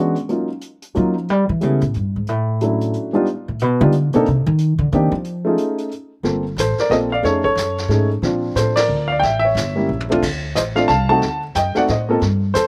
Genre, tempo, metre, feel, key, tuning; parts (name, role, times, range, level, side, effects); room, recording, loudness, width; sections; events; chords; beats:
jazz piano trio; 181 BPM; 3/4; swing 62% on 8ths; G minor from 6.2 s; A4 = 440 Hz
dark baby grand piano; melody; 0.0-12.7 s; F3 to A5; -20 LUFS; equal
upright bass; bass; 0.0-12.7 s; G1 to G3; -22 LUFS; equal
vintage brush drum kit; drums; 0.2-12.7 s; brushed snare drum, crash cymbal, hi-hat, kick drum, ride cymbal, snare drum, toms; -31 LUFS; equal
little or no reverb; recorded outdoors, with no room sound; -19 LUFS; mono
0.0-6.2 A section; 6.2-12.7 B section
upright bass solo 0.0-6.2; band accent 8.7; drum fill 9.9-10.2
0.3 Ebm9; 1.3 A7; 2.3 Dmaj7; 3.3 G(b13) (rootless); 4.3 Cmadd9; 5.2 F7alt; 5.9 N.C.; 6.2 Gm11; 7.2 F7alt; 8.2 Bbmaj9; 9.2 A7b9; 10.2 Dm7; 11.2 D7b9
| 0.28 0.61 0.95 | 1.28 1.61 1.94 | 2.27 2.60 2.93 | 3.26 3.59 3.92 | 4.25 4.59 4.92 | 5.25 5.58 5.91 | 6.24 6.57 6.90 | 7.24 7.57 7.90 | 8.23 8.56 8.89 | 9.23 9.56 9.89 | 10.22 10.55 10.89 | 11.22 11.55 11.88 | 12.21 12.54